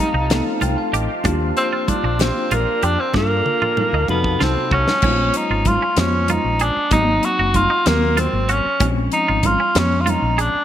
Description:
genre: electric jazz fusion.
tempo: 64 BPM (dotted quarters).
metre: 6/8.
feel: straight.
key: Bb minor from 5.0 s.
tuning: A4 = 440 Hz.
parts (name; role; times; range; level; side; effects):
clear tenor saxophone; melody; 0.0-10.6 s; Bb3 to Gb4; -19 LUFS; equal; none.
bell-like tine electric piano; accompaniment; 0.0-10.5 s; C3 to G5; -25 LUFS; left 3 dB; fast stereo tremolo.
deep dark ambient pad; sustained chords; 0.0-5.0 s; F4 to A5; -28 LUFS; equal; chorus, built-in reverb.
twangy electric guitar; stabs; 0.0-10.6 s; Db4 to Ab4; -27 LUFS; right 4 dB; analog chorus.
woody fretless electric bass; bass; 0.1-10.6 s; Gb1 to G2; -21 LUFS; equal; none.
damped 70s drum kit; drums; 0.3-10.5 s; crash cymbal, hi-hat, kick drum, snare drum, toms; -23 LUFS; left 1 dB; none.
congas; percussion; 0.3-10.2 s; none; -26 LUFS; right 3 dB; none.
room: light reverb, studio reverb.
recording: bright 1980s-style digital production.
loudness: -16 LUFS.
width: side -10 dB against mid.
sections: 0.0-5.0 A section; 5.0-10.6 B section.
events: tine electric piano fill 0.3-1.2; drum fill 3.1-5.0.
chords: 0.0 F7; 1.2 Ebmaj9; 3.1 Gm9; 4.1 F7b9; 5.0 Bbm9; 6.9 Ab7; 8.8 Bbm9.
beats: 0.30 | 1.25 2.19 | 3.14 4.09 | 5.03 5.98 | 6.92 7.87 | 8.81 9.76.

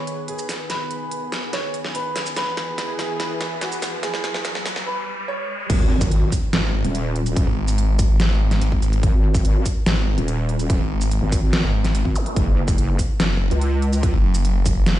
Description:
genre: heavy wobble dubstep.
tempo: 144 BPM.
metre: 4/4.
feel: half-time.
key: G# minor.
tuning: A4 = 440 Hz.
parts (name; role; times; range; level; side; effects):
clear concert grand piano; melody; 0.0-5.5 s; F#4 to C#5; -28 LUFS; right 1 dB; ping-pong delay.
lush unison pad; sustained chords; 0.0-4.8 s; D#3 to B4; -30 LUFS; equal; chorus, sidechain pumping.
riser, impact and zap; sound effects; 2.4-7.4, 12.2-12.3 s; none; -30 LUFS; equal; none.
dubstep drum kit; drums; 0.1-14.9 s; crash cymbal, hi-hat, shaker, snare drum; -26 LUFS; equal; high-pass filter on snare, high-pass filter on hats, high-pass filter on perc, high-pass filter on cymbals.
wobble bass; bass; 5.7-14.1 s; D#1 to C#2; -20 LUFS; equal; chorus, overdrive.
electronic kick drum; drums; 5.7-14.7 s; none; -20 LUFS; equal; none.
snarling distorted saw bass; bass; 6.5-15.0 s; F#1 to G#1; -19 LUFS; equal; overdrive.
room: digital ambience.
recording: played on a big sound system in a bare room, stone room reverb, high-pass filter, nothing above 10.4 kHz.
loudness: -18 LUFS.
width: side -14 dB against mid.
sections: 0.0-5.7 A section; 5.7-15.0 B section.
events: build-up 0.0-5.7; drum fill 0.0-4.9; riser 2.4-5.7; break 4.9-5.7; drop 5.7-15.0; impact 5.7-7.4.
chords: 0.0 G#m; 2.4 E; 5.7 G#5; 12.4 F#5.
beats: 0.28 | 0.70 1.11 1.53 1.95 | 2.37 2.78 3.20 3.62 | 4.03 4.45 4.87 5.28 | 5.70 6.12 6.53 6.95 | 7.37 7.78 8.20 8.62 | 9.03 9.45 9.87 10.28 | 10.70 11.12 11.53 11.95 | 12.37 12.78 13.20 13.62 | 14.03 14.45 14.87.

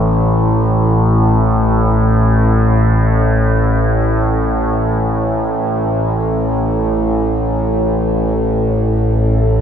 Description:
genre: ambient.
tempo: free time.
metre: none.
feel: none.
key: unclear.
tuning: A4 = 441 Hz.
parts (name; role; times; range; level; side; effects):
overtone-sweeping drone; drone; 0.0-9.6 s; A1 to A2; -12 LUFS; equal; chorus, built-in reverb.
bubbling stepped-filter texture; texture; 8.4-9.6 s; A4; -30 LUFS; equal; none.
room: wet huge ambient reverb, RT60 8.0 s.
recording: dark, warm production.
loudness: -12 LUFS.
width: side -8 dB against mid.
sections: 0.0-8.4 A section; 8.4-9.6 A section.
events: none.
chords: none.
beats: free time.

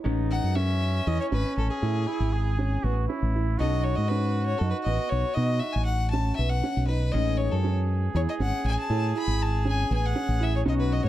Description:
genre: progressive instrumental, progressive.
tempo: 238 BPM (eighths).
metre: 7/8.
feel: straight.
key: A lydian.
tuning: A4 = 440 Hz.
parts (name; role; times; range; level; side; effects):
clear flugelhorn; second line; 0.0-11.1 s; C#4 to G#4; -34 LUFS; right 4 dB; none.
vintage hollow-body jazz guitar; accompaniment; 0.0-11.1 s; G#3 to A4; -35 LUFS; left 6 dB; none.
dark baby grand piano; arpeggios; 0.1-11.1 s; B3 to E4; -32 LUFS; right 5 dB; none.
mellow fretless electric bass; bass; 0.1-11.1 s; G#1 to B2; -25 LUFS; equal; lush chorus.
clear violin; melody; 0.3-11.1 s; G#4 to B5; -32 LUFS; left 4 dB; none.
room: studio ambience.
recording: dark, warm production.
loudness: -23 LUFS.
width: side -13 dB against mid.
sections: 0.1-11.1 A section.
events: violin solo 0.1-11.1.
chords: 0.1 Amaj7; 3.6 B7; 7.1 Amaj7.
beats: | 0.05 0.31 0.56 0.81 1.07 1.32 1.57 | 1.83 2.08 2.33 2.59 2.84 3.09 3.35 | 3.60 3.85 4.11 4.36 4.61 4.86 5.12 | 5.37 5.62 5.87 6.13 6.38 6.63 6.88 | 7.14 7.39 7.64 7.89 8.14 8.40 8.65 | 8.90 9.15 9.40 9.65 9.91 10.16 10.41 | 10.66 10.91.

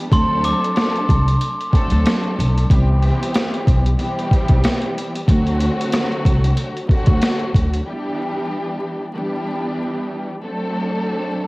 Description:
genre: hip hop, boom-bap hip-hop.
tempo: 93 BPM.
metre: 4/4.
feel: swing 55% on 16ths.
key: unclear.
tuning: A4 = 445 Hz.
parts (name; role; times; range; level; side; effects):
warm symphonic string section; accompaniment; 0.0-11.5 s; D3 to A4; -22 LUFS; equal; cassette tape, high-pass filter, low-pass filter, plate reverb.
glockenspiel with brass mallets; melody; 0.1-2.0 s; C6 to D6; -24 LUFS; equal; high-pass filter, low-pass filter, cassette tape.
upright bass; bass; 0.1-7.8 s; B1 to D2; -18 LUFS; equal; none.
boom bap sampler-style drum kit; drums; 0.1-7.9 s; hi-hat, kick drum, rim click, snare drum; -18 LUFS; equal; cassette tape.
room: light reverb.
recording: home recording on cassette, vinyl crackle.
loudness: -16 LUFS.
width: side -23 dB against mid.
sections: 0.0-7.9 A section; 7.9-11.5 B section.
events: none.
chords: 0.1 D7; 2.7 Cmaj7; 5.3 D7; 7.9 Em7; 10.4 D7.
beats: | 0.12 0.76 1.41 2.06 | 2.70 3.35 3.99 4.63 | 5.28 5.93 6.57 7.22 | 7.86 8.51 9.15 9.80 | 10.44 11.09.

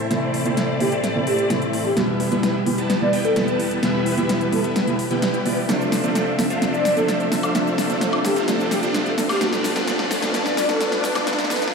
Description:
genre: EDM, festival progressive house.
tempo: 129 BPM.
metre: 4/4.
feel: straight.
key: unclear.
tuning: A4 = 445 Hz.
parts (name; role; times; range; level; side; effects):
dark studio string section; sustained chords; 0.0-11.7 s; E2 to E5; -28 LUFS; left 1 dB; none.
supersaw chords; riff; 0.0-11.7 s; G3 to A5; -24 LUFS; equal; phaser, low-pass filter, ping-pong delay.
riser; sound effects; 3.8-11.7 s; none; -32 LUFS; left 1 dB; none.
felt-muted upright piano; accompaniment; 0.1-11.7 s; B2 to E4; -24 LUFS; right 3 dB; vintage 12-bit sampler grit, ping-pong delay.
big-room dance drum kit; drums; 0.1-11.7 s; hi-hat, shaker, snare drum, woodblock; -25 LUFS; left 1 dB; overdrive.
breathy flute-like synth lead; melody; 0.8-11.6 s; G4 to D5; -25 LUFS; left 1 dB; analog chorus, vintage 12-bit sampler grit, ping-pong delay.
room: wet lush hall reverb, RT60 1.9 s, digital ambience.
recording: played on a big sound system in a bare room, large studio reverb, high-pass filter.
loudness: -18 LUFS.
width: side -5 dB against mid.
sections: 0.0-11.7 A section.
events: build-up 0.0-11.7; drum fill 0.0-11.7; filter sweep on supersaw synth 0.0-11.7; filter sweep 0.0-11.7.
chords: 0.0 Am; 2.0 Em; 5.7 Dm7/F; 9.4 Gadd9.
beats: | 0.11 0.57 1.04 1.50 | 1.97 2.43 2.90 3.36 | 3.83 4.29 4.76 5.22 | 5.69 6.15 6.62 7.08 | 7.55 8.01 8.48 8.94 | 9.41 9.88 10.34 10.80 | 11.27 11.73.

